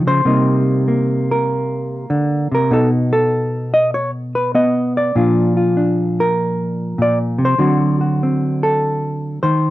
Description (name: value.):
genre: solo jazz.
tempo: 98 BPM.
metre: 4/4.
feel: swing 68% on 8ths.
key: unclear.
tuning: A4 = 441 Hz.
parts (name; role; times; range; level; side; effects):
hollow-body jazz guitar; solo; 0.0-9.7 s; Bb2 to D#5; -14 LUFS; equal; none.
room: light reverb.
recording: dark, warm production.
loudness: -14 LUFS.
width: side -16 dB against mid.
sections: 0.0-9.7 A section.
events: none.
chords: 0.3 Cm7; 2.7 B7; 5.1 Bb; 7.6 D7.